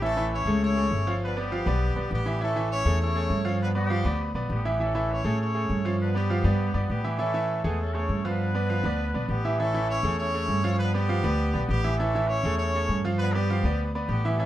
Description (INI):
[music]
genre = latin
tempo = 200 BPM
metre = 4/4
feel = straight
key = A major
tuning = A4 = 441 Hz
[part]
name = clear horn section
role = melody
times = 0.0-14.5 s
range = G3 to C#5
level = -30 LUFS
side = left 1 dB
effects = none
[part]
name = bright grand piano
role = accompaniment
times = 0.0-14.5 s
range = E3 to F5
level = -29 LUFS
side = right 2 dB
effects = none
[part]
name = upright bass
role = bass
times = 0.0-14.5 s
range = G1 to A2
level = -26 LUFS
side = equal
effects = none
[sound]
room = studio reverb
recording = rough home demo mix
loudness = -24 LUFS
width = side -13 dB against mid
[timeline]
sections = 0.0-9.6 A section; 9.6-14.5 A section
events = none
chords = 0.0 Amaj7; 1.2 G7; 2.4 Amaj7; 3.6 G7; 4.8 Amaj7; 6.0 G7; 7.2 Amaj7; 8.4 G7; 9.6 Amaj7; 10.8 G7; 12.0 Amaj7; 13.2 G7